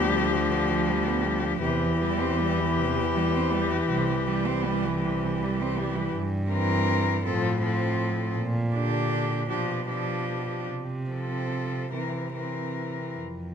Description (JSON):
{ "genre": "classical, lyrical piece for cello ensemble", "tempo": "46-56 BPM (dotted quarters)", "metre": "6/8", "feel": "rubato", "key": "C major, F major from 6.1 s", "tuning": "A4 = 440 Hz", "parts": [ { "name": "dark cello", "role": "melody", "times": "0.0-13.2 s", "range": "G4 to Bb4", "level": "-31 LUFS", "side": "left 9 dB", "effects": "none" }, { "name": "clear cello", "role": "second line", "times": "0.0-13.2 s", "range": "C3 to D4", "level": "-31 LUFS", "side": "right 7 dB", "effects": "none" }, { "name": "warm cello", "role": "accompaniment", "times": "0.0-13.2 s", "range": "D3 to F3", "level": "-30 LUFS", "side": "left 2 dB", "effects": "none" }, { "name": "dark cello", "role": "bass", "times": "0.0-13.5 s", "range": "C2 to C3", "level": "-29 LUFS", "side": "right 1 dB", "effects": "none" } ], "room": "moderate recital hall reverb, RT60 1.5 s", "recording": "none", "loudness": "-24 LUFS", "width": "side -7 dB against mid", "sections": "0.0-13.5 A section", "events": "none", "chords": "0.0 G7(no3)/D; 1.6 C/E; 3.9 C; 6.1 C7/G; 7.2 F/A; 8.4 Gm/Bb; 9.5 G7/B; 10.7 F/C; 11.9 C7", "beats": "0.47 | 1.62 2.77 | 3.90 5.04 | 6.14 7.24 | 8.36 9.49 | 10.67 11.91 | 13.17" }